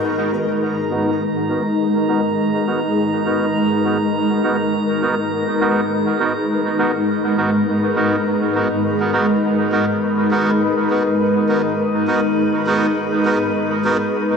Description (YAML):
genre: ambient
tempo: 102 BPM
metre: 4/4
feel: swing 55% on 16ths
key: G# minor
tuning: A4 = 440 Hz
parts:
  - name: granular cloud pad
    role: sustained chords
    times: 0.0-14.4 s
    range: G#3 to B4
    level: -17 LUFS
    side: left 1 dB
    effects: built-in reverb
  - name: drifting glass-harmonics texture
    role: texture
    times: 0.0-14.4 s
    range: D#4 to A#5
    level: -27 LUFS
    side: left 2 dB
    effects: chorus, built-in reverb
  - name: melodica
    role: stabs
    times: 0.3-14.0 s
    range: B3 to A#4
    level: -22 LUFS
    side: right 3 dB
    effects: low-pass filter, dub echo
room: wet plate reverb, RT60 2.1 s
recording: dreamy mix soaked in reverb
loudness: -16 LUFS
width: side -6 dB against mid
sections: 0.0-14.4 A section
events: filter sweep on melodica 0.0-14.4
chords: 0.0 G#m9